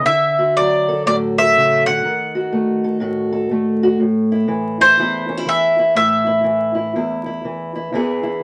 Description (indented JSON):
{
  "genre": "acoustic country blues, solo or duo",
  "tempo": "122 BPM",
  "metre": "4/4",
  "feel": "swing 64% on 8ths",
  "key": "unclear",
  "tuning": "A4 = 440 Hz",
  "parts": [
    { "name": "mandolin", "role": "melody", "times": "0.0-7.4 s", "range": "C5 to F#5", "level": "-17 LUFS", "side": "equal", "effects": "none" },
    { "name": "fingerpicked steel-string acoustic guitar", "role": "accompaniment", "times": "0.0-8.4 s", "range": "E2 to A4", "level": "-21 LUFS", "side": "equal", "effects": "none" }
  ],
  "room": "moderate club reverb, RT60 0.5 s",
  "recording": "vinyl crackle",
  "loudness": "-17 LUFS",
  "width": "mono",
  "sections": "0.0-8.4 A section",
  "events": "none",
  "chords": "0.1 D; 2.0 D#dim; 4.0 A5; 7.9 E",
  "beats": "| 0.05 0.55 1.04 1.53 | 2.02 2.51 3.00 3.50 | 3.99 4.48 4.97 5.46 | 5.95 6.44 6.93 7.42 | 7.91 8.40"
}